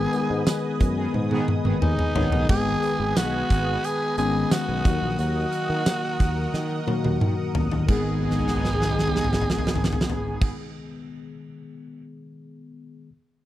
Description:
1980s-style pop; 89 BPM; 4/4; straight; G# minor; A4 = 440 Hz
breathy tenor saxophone; melody; 0.0-10.5 s; D#4 to G#4; -28 LUFS; right 2 dB
tine electric piano; accompaniment; 0.0-13.1 s; D#3 to G#5; -28 LUFS; left 4 dB; analog chorus
lush unison pad; sustained chords; 0.0-10.5 s; B3 to D#6; -35 LUFS; right 2 dB; chorus, phaser
sustaining fretless electric bass; bass; 0.0-10.5 s; G#1 to D#3; -28 LUFS; right 1 dB
huge arena drum kit; drums; 0.1-12.0 s; crash cymbal, hi-hat, kick drum, snare drum, tambourine, toms; -24 LUFS; equal
analog synth brass; stabs; 1.0-2.4, 7.9-10.5 s; D#3 to G#4; -31 LUFS; right 3 dB; chorus
small room ambience; dry, close 1970s-style studio recording; -21 LUFS; side -14 dB against mid
0.0-2.5 A section; 2.5-7.9 B section; 7.9-10.6 C section
drum fill 1.1-2.5, 6.5-7.9, 8.2-10.4; tine electric piano fill 1.5-2.5
0.0 G#m; 4.9 D#m; 7.9 G#m

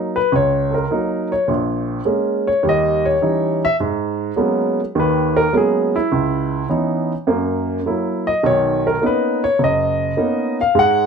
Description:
solo jazz; 104 BPM; 4/4; swing 69% on 8ths; A4 = 441 Hz
warm upright piano; solo; 0.0-11.1 s; F#1 to F#5; -16 LUFS; equal
moderate studio reverb, RT60 0.6 s; -16 LUFS; side -6 dB against mid
0.0-11.1 A section
upright piano solo 0.0-11.1
0.0 F#6; 1.5 A#m7; 2.6 D#7b9; 3.8 G#m11; 6.1 C#m9; 7.3 F#7; 8.4 Bmaj9

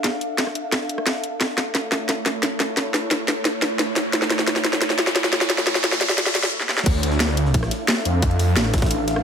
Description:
dark technical drum and bass; 176 BPM; 4/4; straight; D harmonic minor; A4 = 444 Hz
swarming drone; sustained chords; 0.0-9.2 s; A3 to F5; -27 LUFS; right 1 dB; built-in reverb, sidechain pumping
drum and bass drum kit; drums; 0.0-9.2 s; crash cymbal, hi-hat, rim click, snare drum; -20 LUFS; equal; overdrive, studio reverb
riser; sound effects; 3.0-6.5 s; -28 LUFS; right 1 dB
wide detuned saw bass; bass; 6.9-9.2 s; A1 to F2; -20 LUFS; equal; chorus, sidechain pumping
electronic kick drum; drums; 6.9-8.9 s; -21 LUFS; equal; overdrive, studio reverb
jungle sampler-style drum kit; drums; 6.9-9.2 s; hi-hat, ride cymbal, snare drum; -32 LUFS; right 1 dB; high-pass filter on cymbals, studio reverb, high-pass filter on snare, high-pass filter on hats, high-pass filter on room
light reverb; high-pass filter; -18 LUFS; side -7 dB against mid
0.0-6.9 A section; 6.9-9.2 B section
build-up 0.0-6.9; drum fill 0.0-6.5, 6.6; riser 3.0-6.5; break 6.5-6.9; drop 6.9-9.2
0.0 Dm; 1.4 A; 6.9 Dm

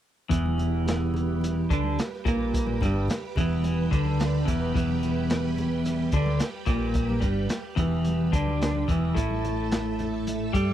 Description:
psychedelic rock; 109 BPM; 4/4; straight; E minor; A4 = 438 Hz
string machine, violins; sustained chords; 0.3-10.7 s; G3 to E5; -36 LUFS; right 5 dB; ensemble chorus
twelve-string electric guitar; riff; 0.3-10.7 s; E2 to G3; -25 LUFS; equal; harmonic tremolo, double-tracked left and right
hollow-body short-scale picked electric bass; bass; 0.3-10.7 s; E1 to G2; -30 LUFS; equal
crunchy breakbeat drum kit; drums; 0.3-10.7 s; hi-hat, kick drum, snare drum; -28 LUFS; equal
congas; percussion; 0.5-10.7 s; -40 LUFS; left 2 dB
little or no reverb; dry, close 1970s-style studio recording; -23 LUFS; side -11 dB against mid
0.3-10.7 A section
0.3 Em; 9.2 A5

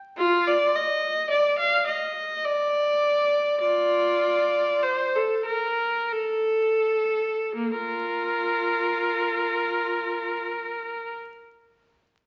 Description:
classical, baroque-style suite movement for unaccompanied viola; 40-54 BPM; 3/4; rubato; Bb major; A4 = 439 Hz
clear viola; solo; 0.2-11.2 s; Bb3 to F5; -24 LUFS; equal
wet recital hall reverb, RT60 1.3 s; very old 78 rpm record, vinyl crackle, nothing above 7.6 kHz; -24 LUFS; mono
0.0-7.6 A section; 7.6-11.7 B section
slowing down 0.0-7.6

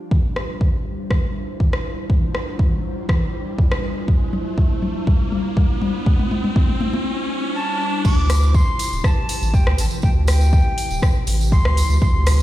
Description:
afro house; 121 BPM; 4/4; straight; D minor; A4 = 439 Hz
ethereal airy pad; sustained chords; 0.0-12.4 s; C3 to C5; -30 LUFS; right 1 dB; ensemble chorus, built-in reverb, vintage 12-bit sampler grit, sidechain pumping
afro-pop drum kit; drums; 0.1-12.4 s; crash cymbal, hi-hat, rim click, toms; -26 LUFS; left 2 dB; studio reverb
electronic kick drum; drums; 0.1-12.1 s; -18 LUFS; equal; overdrive, studio reverb
riser; sound effects; 1.6-8.0 s; -29 LUFS; left 1 dB
breathy bright jazz flute; melody; 7.6-12.4 s; G5 to D6; -26 LUFS; left 1 dB; vintage 12-bit sampler grit, dub echo
round analog bass; bass; 8.0-12.4 s; D1 to D2; -17 LUFS; equal; sidechain pumping
tambourine; percussion; 8.1-12.4 s; -32 LUFS; right 5 dB
little or no reverb; played on a big sound system in a bare room, stone room reverb; -17 LUFS; side -14 dB against mid
0.1-8.0 A section; 8.0-12.4 B section
build-up 0.1-8.0; drum fill 0.1-7.1; riser 1.6-8.0; break 7.1-8.0; drop 8.0-12.4
0.1 Dm11

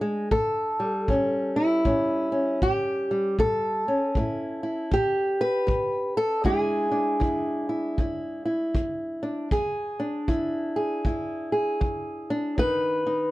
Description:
acoustic country blues, solo or duo; 78 BPM; 4/4; swing 61% on 8ths; E mixolydian; A4 = 438 Hz
fingerpicked old ladder-braced acoustic guitar; melody; 0.0-13.3 s; E2 to B4; -24 LUFS; equal
kick drum; drums; 0.3-12.8 s; -28 LUFS; equal
light reverb; -23 LUFS; side -18 dB against mid
0.0-13.3 A section
0.3 A7; 6.4 E7; 12.6 B

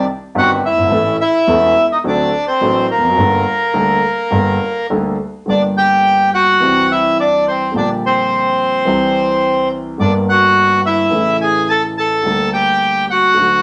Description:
tango; 106 BPM; 4/4; rubato; G harmonic minor; A4 = 439 Hz
bandoneon; melody; 0.0-13.6 s; Bb3 to A5; -15 LUFS; equal
warm concert grand piano; accompaniment; 0.0-13.6 s; E1 to Bb4; -20 LUFS; equal
wet studio reverb, RT60 0.7 s; nothing above 10.6 kHz; -14 LUFS; mono
0.0-5.5 A section; 5.5-13.6 B section
0.0 Cm; 0.9 A; 2.0 D7; 3.2 Gmadd9; 5.5 Gm; 6.6 C; 7.8 Gm/Bb; 8.9 C; 10.0 Gm; 11.1 A; 12.2 Gm/D

